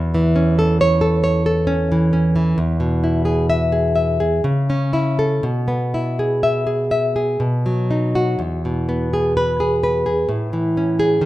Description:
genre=romantic piece for solo classical guitar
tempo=62 BPM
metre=3/4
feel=uneven beats, rubato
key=E major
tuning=A4 = 438 Hz
part: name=nylon-string guitar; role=solo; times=0.0-11.3 s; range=E2 to E5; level=-16 LUFS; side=equal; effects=none
room=moderate recital hall reverb, RT60 1.7 s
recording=minimal, uncompressed stereo recording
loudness=-16 LUFS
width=side -16 dB against mid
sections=0.0-11.3 A section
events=none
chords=0.0 A/E; 2.6 E; 4.4 A/C#; 5.4 E/B; 7.4 B; 8.4 E; 10.3 Amaj7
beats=0.81 1.69 | 2.58 3.50 4.44 | 5.44 6.45 7.43 | 8.42 9.38 10.31 | 11.23

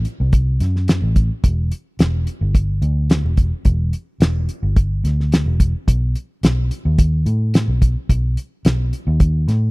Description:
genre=straight-eighth soul blues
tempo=108 BPM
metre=4/4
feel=straight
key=E minor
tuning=A4 = 438 Hz
part: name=vintage muted fingered electric bass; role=bass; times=0.0-9.7 s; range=E1 to A2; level=-17 LUFS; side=equal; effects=none
part: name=cloth-damped thuddy drum kit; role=drums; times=0.0-9.6 s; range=hi-hat, kick drum, snare drum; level=-16 LUFS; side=equal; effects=none
room=little or no reverb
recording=dry, close 1970s-style studio recording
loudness=-16 LUFS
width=side -26 dB against mid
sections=0.0-9.7 A section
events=none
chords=none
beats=0.34 0.89 | 1.44 2.00 2.55 3.11 | 3.66 4.22 4.77 5.33 | 5.88 6.43 6.99 7.54 | 8.10 8.65 9.21

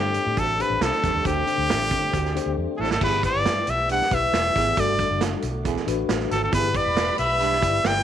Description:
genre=uptempo 1960s-style soul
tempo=136 BPM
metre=4/4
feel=straight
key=unclear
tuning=A4 = 444 Hz
part: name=brilliant trumpet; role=melody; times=0.0-8.0 s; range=G4 to G5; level=-22 LUFS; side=equal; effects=none
part: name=mellow reed electric piano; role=accompaniment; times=0.0-8.0 s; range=G2 to D5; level=-30 LUFS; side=left 14 dB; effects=fast tremolo
part: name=tonewheel organ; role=sustained chords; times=0.0-8.0 s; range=D3 to G4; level=-34 LUFS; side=right 1 dB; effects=overdrive, stopped rotary speaker
part: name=vintage muted fingered electric bass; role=bass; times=0.0-8.0 s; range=E1 to D3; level=-29 LUFS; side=equal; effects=none
part: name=vintage drum kit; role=drums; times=0.1-8.0 s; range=crash cymbal, hi-hat, kick drum, snare drum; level=-28 LUFS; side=right 4 dB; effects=none
part: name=breathy baritone saxophone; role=riff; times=0.4-7.6 s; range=D2 to A2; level=-31 LUFS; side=right 11 dB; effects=none
part: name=dark studio violin section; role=second line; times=6.5-8.0 s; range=B4 to B5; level=-30 LUFS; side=equal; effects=slapback echo
room=light reverb, small room reverb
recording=1960s-style stereo with parts hard left and right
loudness=-20 LUFS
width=side -10 dB against mid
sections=0.0-3.0 A section; 3.0-8.0 B section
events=drum fill 2.6-3.0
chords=0.0 D7sus4; 3.0 Em/G; 4.8 D; 6.5 Em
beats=0.38 0.82 | 1.26 1.70 2.14 2.58 | 3.02 3.46 3.90 4.33 | 4.78 5.21 5.65 6.09 | 6.53 6.97 7.41 7.85

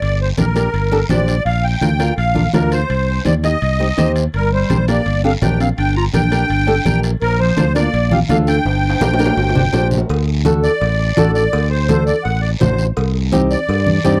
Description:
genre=latin, cumbia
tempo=167 BPM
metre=4/4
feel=straight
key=G minor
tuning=A4 = 440 Hz
part: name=musette accordion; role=melody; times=0.0-14.2 s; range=Bb4 to Bb5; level=-22 LUFS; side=equal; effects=slapback echo
part: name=fingered electric bass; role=bass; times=0.0-14.2 s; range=G1 to G2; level=-19 LUFS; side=equal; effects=none
part: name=guiro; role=percussion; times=0.0-14.2 s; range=none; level=-35 LUFS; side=equal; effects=none
part: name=timbales and cowbell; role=percussion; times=0.0-14.2 s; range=none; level=-30 LUFS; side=equal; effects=none
part: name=flamenco guitar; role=accompaniment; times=0.4-14.2 s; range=C4 to Eb5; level=-21 LUFS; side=equal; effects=none
part: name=congas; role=percussion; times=0.4-14.2 s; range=none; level=-22 LUFS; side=equal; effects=none
part: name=breathy clarinet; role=second line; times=4.3-9.9 s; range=F3 to F4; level=-25 LUFS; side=equal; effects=none
room=little or no reverb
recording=dry, close 1970s-style studio recording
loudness=-16 LUFS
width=mono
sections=0.0-10.1 A section; 10.1-14.2 B section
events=drum fill 8.7-10.1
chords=0.0 Gm; 1.5 Bb; 2.9 Cm; 4.3 Gm; 7.2 Bb; 8.7 Gm; 10.1 D; 13.0 Cmadd9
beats=| 0.02 0.38 0.74 1.10 | 1.46 1.82 2.18 2.54 | 2.90 3.26 3.62 3.98 | 4.34 4.70 5.06 5.42 | 5.78 6.14 6.50 6.86 | 7.22 7.58 7.94 8.30 | 8.66 9.02 9.38 9.73 | 10.10 10.45 10.81 11.17 | 11.53 11.89 12.25 12.61 | 12.97 13.33 13.69 14.05

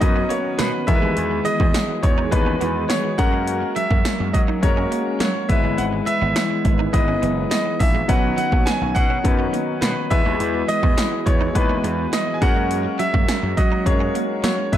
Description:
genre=1980s-style pop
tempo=104 BPM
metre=4/4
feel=straight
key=F# mixolydian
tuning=A4 = 441 Hz
part: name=bright concert grand piano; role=melody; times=0.0-14.8 s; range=B4 to G#5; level=-24 LUFS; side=right 1 dB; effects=none
part: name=warm baby grand piano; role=accompaniment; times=0.0-14.8 s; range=E3 to B4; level=-25 LUFS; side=left 6 dB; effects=none
part: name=brassy analog pad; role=sustained chords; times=0.0-14.8 s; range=D#3 to G#4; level=-30 LUFS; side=right 1 dB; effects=chorus
part: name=direct-recorded clean electric guitar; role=riff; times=0.0-14.6 s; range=F#3 to D#4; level=-31 LUFS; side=right 8 dB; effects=ensemble chorus
part: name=analog synth brass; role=stabs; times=0.0-14.8 s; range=D#3 to C#5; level=-31 LUFS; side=right 2 dB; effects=chorus
part: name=gritty slap bass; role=bass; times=0.0-14.8 s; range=F#1 to F#3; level=-24 LUFS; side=equal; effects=overdrive
part: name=80s electronic pad drums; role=drums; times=0.0-14.8 s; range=hi-hat, kick drum, snare drum, tambourine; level=-20 LUFS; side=equal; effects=none
room=light reverb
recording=dark, warm production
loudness=-17 LUFS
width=side -11 dB against mid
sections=0.0-14.8 A section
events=none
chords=0.0 Badd9; 0.9 Emaj7; 3.2 F#add9; 5.5 Emaj7; 8.1 Badd9; 10.1 Emaj7; 12.4 F#add9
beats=0.01 0.59 | 1.17 1.75 2.32 2.90 | 3.48 4.05 4.63 5.21 | 5.78 6.36 6.94 7.51 | 8.09 8.67 9.24 9.82 | 10.40 10.98 11.55 12.13 | 12.71 13.28 13.86 14.44

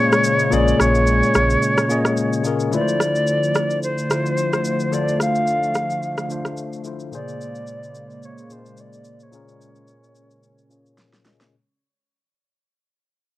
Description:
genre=amapiano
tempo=109 BPM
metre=4/4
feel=swing 55% on 16ths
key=unclear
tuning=A4 = 440 Hz
part: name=bright reedy silver concert flute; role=melody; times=0.0-11.0 s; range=C5 to F5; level=-21 LUFS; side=equal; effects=low-pass filter, cassette tape, analog delay
part: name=bell-like tine electric piano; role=accompaniment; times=0.0-11.6 s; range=Bb2 to Eb5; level=-23 LUFS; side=left 2 dB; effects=auto-pan, low-pass filter, cassette tape
part: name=hollow soft pad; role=sustained chords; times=0.0-11.5 s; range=Db3 to Db4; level=-27 LUFS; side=right 1 dB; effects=chorus, low-pass filter, cassette tape
part: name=electronic shaker, rim click and snare drum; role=drums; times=0.1-11.5 s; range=none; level=-24 LUFS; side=equal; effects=cassette tape
part: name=sub bass with octave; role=bass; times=0.5-1.6 s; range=Bb1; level=-20 LUFS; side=equal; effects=none
room=light reverb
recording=home recording on cassette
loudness=-17 LUFS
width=side -16 dB against mid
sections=0.0-11.5 A section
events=fade-out 0.0-11.5; filter sweep 0.0-11.5; drum fill 11.0-11.5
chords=0.0 Bbm7; 2.7 Dm7; 7.1 Bbm7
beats=| 0.52 1.07 1.62 2.17 | 2.73 3.27 3.83 4.38 | 4.93 5.48 6.03 6.58 | 7.13 7.68 8.23 8.78 | 9.33 9.88 10.43 10.98

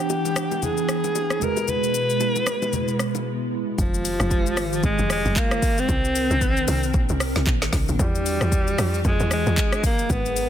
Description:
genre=amapiano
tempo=114 BPM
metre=4/4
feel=swing 58% on 16ths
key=unclear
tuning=A4 = 440 Hz
part: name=breathy alto saxophone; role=melody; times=0.0-10.5 s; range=F3 to Cb5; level=-25 LUFS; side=equal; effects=ping-pong delay
part: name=tine electric piano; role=accompaniment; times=0.0-3.8 s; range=E3 to G5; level=-29 LUFS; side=right 3 dB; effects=medium stereo tremolo
part: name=hollow soft pad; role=sustained chords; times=0.0-10.5 s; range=Cb3 to Bb4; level=-29 LUFS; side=equal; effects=ensemble chorus, sidechain pumping
part: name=afro-pop drum kit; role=drums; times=0.1-10.5 s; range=handclaps, hi-hat, kick drum, rim click, shaker, snare drum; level=-24 LUFS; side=equal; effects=soft clipping on snare
part: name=bongos and congas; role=percussion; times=0.1-3.2 s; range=none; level=-32 LUFS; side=left 3 dB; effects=none
part: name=tight log drum bass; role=bass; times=3.8-10.5 s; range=F1 to F2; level=-24 LUFS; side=equal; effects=none
room=little or no reverb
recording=dense, heavily limited modern master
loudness=-20 LUFS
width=side -10 dB against mid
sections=0.0-3.8 A section; 3.8-10.5 B section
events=break 3.3-3.8; drop 3.8-10.5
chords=0.0 Em9; 1.4 Abm7; 3.8 Fm9; 5.9 Cm9; 8.0 Em9; 9.8 Abm9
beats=0.10 0.62 1.15 | 1.68 2.20 2.73 3.26 | 3.78 4.31 4.84 5.36 | 5.89 6.42 6.94 7.47 | 7.99 8.52 9.05 9.57 | 10.10

